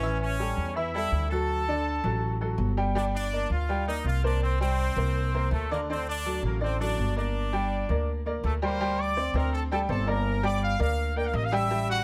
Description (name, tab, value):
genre	latin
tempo	164 BPM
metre	4/4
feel	straight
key	G minor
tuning	A4 = 441 Hz
part	bright trumpet section	melody	0.0-12.0 s	A3 to E6	-33 LUFS	equal	none
part	bright upright piano	accompaniment	0.0-12.0 s	D3 to G5	-33 LUFS	equal	none
part	upright bass	bass	0.0-12.0 s	G1 to E2	-31 LUFS	equal	none
room	light reverb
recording	close, detailed microphones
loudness	-28 LUFS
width	mono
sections	0.0-8.8 A section; 8.8-12.0 B section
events	none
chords	0.0 A7; 1.5 D; 3.0 Gm7; 4.4 C5; 5.9 D7; 7.3 Gm; 10.3 Gm7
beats	| 0.02 0.39 0.76 1.12 | 1.49 1.86 2.23 2.59 | 2.96 3.33 3.69 4.06 | 4.42 4.79 5.15 5.52 | 5.88 6.25 6.62 6.98 | 7.34 7.71 8.07 8.44 | 8.80 9.17 9.53 9.89 | 10.26 10.62 10.98 11.35 | 11.71